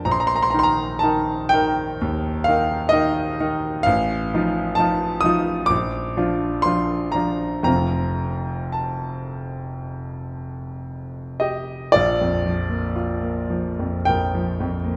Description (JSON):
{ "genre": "classical, romantic nocturne for solo piano", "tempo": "50-66 BPM", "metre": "4/4", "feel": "rubato", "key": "Bb major", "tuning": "A4 = 441 Hz", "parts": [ { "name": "warm concert grand piano", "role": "solo", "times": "0.0-15.0 s", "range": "F1 to Eb6", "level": "-22 LUFS", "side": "equal", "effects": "none" } ], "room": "wet recital hall reverb, RT60 1.4 s", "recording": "none", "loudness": "-22 LUFS", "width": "mono", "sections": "0.0-12.0 A section; 12.0-15.0 B section", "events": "none", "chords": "0.1 Eb/Bb; 3.9 F7/A; 5.7 Bb; 7.7 F; 12.0 Bb" }